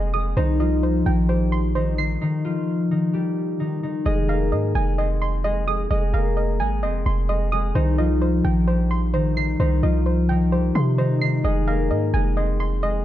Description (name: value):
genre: hip hop, trap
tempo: 130 BPM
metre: 4/4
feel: half-time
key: F minor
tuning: A4 = 436 Hz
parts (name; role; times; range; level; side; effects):
- concert harp; melody; 0.0-13.0 s; Eb3 to C5; -23 LUFS; left 2 dB; low-pass filter, analog delay
- soft round pluck; accompaniment; 0.0-13.0 s; C5 to C7; -27 LUFS; right 3 dB; chorus, low-pass filter, analog delay
- warm 808-style bass; bass; 0.0-13.0 s; F1 to C3; -22 LUFS; equal; none
room: studio reverb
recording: echo-heavy mix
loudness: -19 LUFS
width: side -13 dB against mid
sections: 0.0-4.1 A section; 4.1-13.0 B section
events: stop 2.2-4.1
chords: 0.4 Cm; 4.1 Fm7; 7.8 Cm; 11.4 Fm7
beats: | 0.37 0.83 1.29 1.75 | 2.21 2.67 3.14 3.60 | 4.06 4.52 4.98 5.44 | 5.91 6.37 6.83 7.29 | 7.75 8.21 8.68 9.14 | 9.60 10.06 10.52 10.98 | 11.44 11.91 12.37 12.83